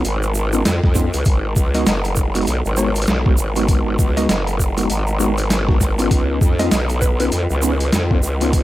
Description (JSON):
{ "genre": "glitch hop", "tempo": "99 BPM", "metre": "4/4", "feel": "swing 60% on 16ths", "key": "G# minor pentatonic", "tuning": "A4 = 440 Hz", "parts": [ { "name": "woody wave-folded pluck", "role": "melody", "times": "0.0-7.3 s", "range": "B4 to D#5", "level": "-29 LUFS", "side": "right 1 dB", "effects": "chorus, ping-pong delay" }, { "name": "mellow tine electric piano", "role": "stabs", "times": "0.0-8.6 s", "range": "G#3 to F#4", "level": "-23 LUFS", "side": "equal", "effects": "medium stereo tremolo, sidechain pumping, ping-pong delay" }, { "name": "growl bass", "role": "bass", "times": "0.0-8.6 s", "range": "F#1 to E#2", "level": "-19 LUFS", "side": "equal", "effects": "chorus, overdrive" }, { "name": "boom bap sampler-style drum kit", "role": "drums", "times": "0.0-8.6 s", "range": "hi-hat, snare drum", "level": "-22 LUFS", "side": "equal", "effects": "overdrive, small room ambience" }, { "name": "egg shaker", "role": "percussion", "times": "0.0-8.6 s", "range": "none", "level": "-30 LUFS", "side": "right 5 dB", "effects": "none" }, { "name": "electronic kick drum", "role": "drums", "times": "0.8-8.6 s", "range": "none", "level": "-16 LUFS", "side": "equal", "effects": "overdrive, small room ambience" } ], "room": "digital ambience", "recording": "vinyl crackle", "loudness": "-15 LUFS", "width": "side -15 dB against mid", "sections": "0.0-8.6 A section", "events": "none", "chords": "0.0 C#9; 1.3 G#m7; 6.1 C#9", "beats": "0.05 0.66 | 1.26 1.87 2.47 3.08 | 3.69 4.29 4.90 5.50 | 6.11 6.72 7.32 7.93 | 8.53" }